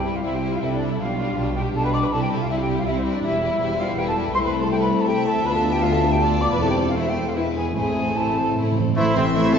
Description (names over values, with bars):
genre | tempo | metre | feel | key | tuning
quick classical-period movement for symphony orchestra | 160 BPM | 3/4 | rubato | C major, A minor from 4.4 s | A4 = 439 Hz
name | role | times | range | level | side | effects
clear studio violin section | second line | 0.0-9.6 s | G3 to A5 | -30 LUFS | left 3 dB | none
silver concert flute | second line | 0.0-9.6 s | C5 to D6 | -25 LUFS | equal | none
rich studio viola section | accompaniment | 0.0-9.6 s | A3 to D5 | -30 LUFS | right 2 dB | none
mellow French horn section | sustained chords | 0.0-9.6 s | G3 to F4 | -25 LUFS | left 4 dB | none
rich chamber cello section | bass | 0.0-9.6 s | C2 to A3 | -28 LUFS | right 3 dB | none
rich studio double bass section | bass | 0.0-9.6 s | E1 to D2 | -28 LUFS | right 1 dB | none
rich chamber violin section | melody | 0.2-9.6 s | F4 to E5 | -33 LUFS | left 4 dB | none
timpani | percussion | 6.6-8.9 s | E2 to A2 | -26 LUFS | right 3 dB | none
clear clarinet | second line | 9.0-9.6 s | E3 to C4 | -24 LUFS | equal | none
clear oboe | second line | 9.0-9.6 s | E5 | -29 LUFS | equal | none
mellow bassoon | accompaniment | 9.0-9.6 s | A3 | -32 LUFS | right 3 dB | none
clear trumpet | stabs | 9.0-9.6 s | C4 to A4 | -23 LUFS | right 3 dB | none
room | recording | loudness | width
wet scoring stage reverb, RT60 1.6 s | heard from further back in the room, nothing above 7.5 kHz | -19 LUFS | side -7 dB against mid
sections
0.0-9.0 A section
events
timpani fill 7.8-9.0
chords
0.0 C; 1.0 G7/B; 2.1 C; 3.2 C/E; 4.4 Am/C; 5.5 Bdim/D; 6.6 Am/E; 7.4 E; 7.8 Am